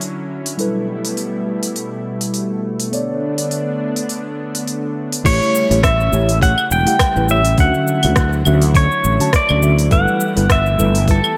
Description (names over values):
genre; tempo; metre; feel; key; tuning
sunset chillout; 103 BPM; 4/4; swing 56% on 16ths; D major; A4 = 440 Hz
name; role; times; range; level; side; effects
mellow tine electric piano; accompaniment; 0.0-11.2 s; D3 to A5; -23 LUFS; equal; digital delay
lush unison pad; sustained chords; 0.0-11.4 s; B2 to G4; -27 LUFS; equal; chorus, vintage 12-bit sampler grit
deep house drum kit; drums; 0.0-11.3 s; cabasa, claves, crash cymbal, hi-hat, rim click; -24 LUFS; equal; none
electronic kick drum; drums; 5.2-11.2 s; none; -18 LUFS; equal; none
pedal steel guitar; melody; 5.3-11.4 s; A4 to G5; -20 LUFS; equal; digital delay
sustaining fretless electric bass; bass; 5.3-11.2 s; E1 to D2; -19 LUFS; equal; none
room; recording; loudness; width
moderate lush hall reverb, RT60 2.0 s; bright 1980s-style digital production; -16 LUFS; mono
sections
0.0-5.3 A section; 5.3-11.4 B section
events
none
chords
0.0 Dmaj9; 0.6 G69; 2.9 Bm9; 5.3 A7; 7.6 Dmaj9; 9.9 G69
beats
0.01 | 0.60 1.18 1.76 2.34 | 2.93 3.51 4.09 4.67 | 5.26 5.84 6.42 7.00 | 7.59 8.17 8.75 9.33 | 9.92 10.50 11.08